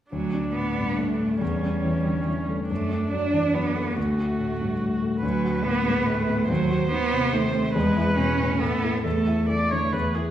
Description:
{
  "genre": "quick classical-period movement for piano quartet",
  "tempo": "141 BPM",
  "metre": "3/4",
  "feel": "rubato",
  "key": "D major",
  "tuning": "A4 = 440 Hz",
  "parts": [
    { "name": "rich cello", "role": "second line", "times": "0.1-9.9 s", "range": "F#3 to D4", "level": "-25 LUFS", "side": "right 2 dB", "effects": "none" },
    { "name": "rich viola", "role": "accompaniment", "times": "0.1-10.3 s", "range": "C#4 to D5", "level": "-29 LUFS", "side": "right 1 dB", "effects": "none" },
    { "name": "warm grand piano", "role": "accompaniment", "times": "0.1-10.3 s", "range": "D2 to A4", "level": "-26 LUFS", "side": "left 2 dB", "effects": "none" }
  ],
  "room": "wet recital hall reverb, RT60 1.6 s",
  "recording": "heard from further back in the room",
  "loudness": "-22 LUFS",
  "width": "side -11 dB against mid",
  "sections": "0.1-10.3 A section",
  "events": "none",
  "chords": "0.1 D; 1.4 A7/E; 2.7 D/F#; 4.0 D; 5.2 Bm7/D; 6.5 D#dim7; 7.8 E; 8.6 A5; 9.0 A/E"
}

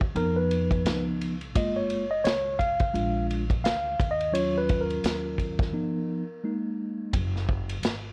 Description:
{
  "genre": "hip hop, jazz-hop",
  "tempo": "86 BPM",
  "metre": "4/4",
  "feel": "swing 58% on 16ths",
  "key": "F# major",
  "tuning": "A4 = 437 Hz",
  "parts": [
    { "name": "upright bass", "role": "bass", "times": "0.0-8.1 s", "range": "F#1 to E#2", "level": "-35 LUFS", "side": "equal", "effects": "none" },
    { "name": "vintage drum kit", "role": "drums", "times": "0.0-8.0 s", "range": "hi-hat, kick drum, ride cymbal, snare drum", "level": "-32 LUFS", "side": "equal", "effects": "none" },
    { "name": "mellow tine electric piano", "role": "accompaniment", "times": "0.2-7.1 s", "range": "E#3 to E#5", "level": "-29 LUFS", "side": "equal", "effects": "none" }
  ],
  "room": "moderate studio reverb, RT60 0.5 s",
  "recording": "worn, warbling old tape, cassette tape, warbly pitch drift",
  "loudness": "-27 LUFS",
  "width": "mono",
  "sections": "0.0-7.1 A section",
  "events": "tine electric piano solo 0.0-7.1; break 5.7-7.1",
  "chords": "0.2 Bmaj7#11/E#; 0.9 C#9; 1.6 F#maj7; 2.9 A#7; 4.0 D#m7; 5.7 Bmaj7#11/E#; 6.4 G#sus2; 7.1 N.C."
}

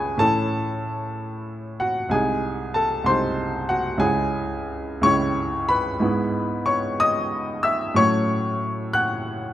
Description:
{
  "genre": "classical, romantic character piece for solo piano",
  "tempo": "62 BPM (dotted quarters)",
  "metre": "6/8",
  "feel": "rubato",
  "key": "C# minor, E major from 6.0 s",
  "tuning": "A4 = 441 Hz",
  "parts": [
    { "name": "warm upright piano", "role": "solo", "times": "0.0-9.5 s", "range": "B#1 to F#6", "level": "-20 LUFS", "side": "equal", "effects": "none" }
  ],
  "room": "light reverb",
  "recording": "close, detailed microphones",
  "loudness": "-20 LUFS",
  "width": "side -12 dB against mid",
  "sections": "0.0-9.5 A section",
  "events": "none",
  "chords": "0.2 A; 2.1 G#/B#; 4.0 C#m; 6.0 E/G#; 8.0 F#m/A"
}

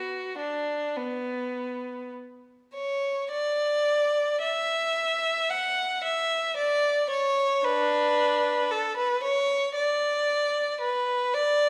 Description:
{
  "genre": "classical, baroque-style suite movement for unaccompanied violin",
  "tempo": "50-58 BPM",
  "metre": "4/4",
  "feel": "rubato",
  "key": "B minor",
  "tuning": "A4 = 440 Hz",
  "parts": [
    { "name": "rich violin", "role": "solo", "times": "0.0-11.7 s", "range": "B3 to F#5", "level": "-26 LUFS", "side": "equal", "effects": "none" }
  ],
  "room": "wet recital hall reverb, RT60 1.4 s",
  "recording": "heard from further back in the room",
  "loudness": "-26 LUFS",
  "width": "mono",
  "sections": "0.0-3.3 A section; 3.3-11.7 B section",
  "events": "none",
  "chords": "none"
}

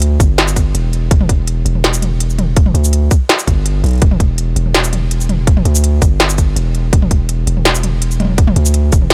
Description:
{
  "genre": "half-time drum and bass",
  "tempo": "165 BPM",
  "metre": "4/4",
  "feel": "half-time",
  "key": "E minor",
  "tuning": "A4 = 440 Hz",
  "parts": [
    { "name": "long sustained 808-style bass", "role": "bass", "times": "0.0-9.1 s", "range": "E1 to D2", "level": "-16 LUFS", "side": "equal", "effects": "none" },
    { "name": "industrial drum kit", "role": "drums", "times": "0.0-9.1 s", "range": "hi-hat, shaker, snare drum, toms", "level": "-19 LUFS", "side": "equal", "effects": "none" },
    { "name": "electronic kick drum", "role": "drums", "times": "0.2-9.0 s", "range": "none", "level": "-14 LUFS", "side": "equal", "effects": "overdrive" }
  ],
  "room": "little or no reverb",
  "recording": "none",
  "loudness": "-13 LUFS",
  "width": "mono",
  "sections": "0.0-9.1 A section",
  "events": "none",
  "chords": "none"
}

